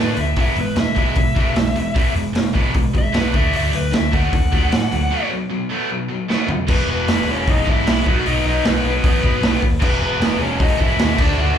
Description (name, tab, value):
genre	punk rock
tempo	153 BPM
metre	4/4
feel	straight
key	E mixolydian, E major from 6.7 s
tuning	A4 = 440 Hz
part	bluesy overdriven lead guitar	melody	0.0-11.6 s	B3 to F#5	-23 LUFS	left 2 dB	distortion, slapback echo
part	biting overdriven guitar	riff	0.0-11.6 s	B2 to F#4	-24 LUFS	right 12 dB	slapback echo
part	tight distorted guitar	riff	0.0-11.6 s	E2 to D4	-24 LUFS	left 9 dB	distortion, slapback echo
part	overdriven picked electric bass	bass	0.0-11.5 s	E1 to A2	-22 LUFS	equal	none
part	raw garage drum kit	drums	0.2-11.3 s	crash cymbal, hi-hat, kick drum, snare drum, toms	-19 LUFS	equal	none
room	small room ambience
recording	live gig heard through the venue's PA, club reverb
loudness	-16 LUFS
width	side -9 dB against mid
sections	0.0-6.7 A section; 6.7-11.6 B section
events	lead electric guitar solo 0.0-6.7; break 5.1-6.7; drum fill 6.3-6.7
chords	0.4 E; 3.3 D; 5.1 B5; 6.7 E; 8.1 B; 9.8 E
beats	| 0.37 0.77 1.16 1.56 | 1.95 2.35 2.74 3.14 | 3.54 3.93 4.32 4.72 | 5.11 5.51 5.90 6.29 | 6.68 7.08 7.47 7.86 | 8.25 8.64 9.03 9.42 | 9.81 10.21 10.60 10.99 | 11.38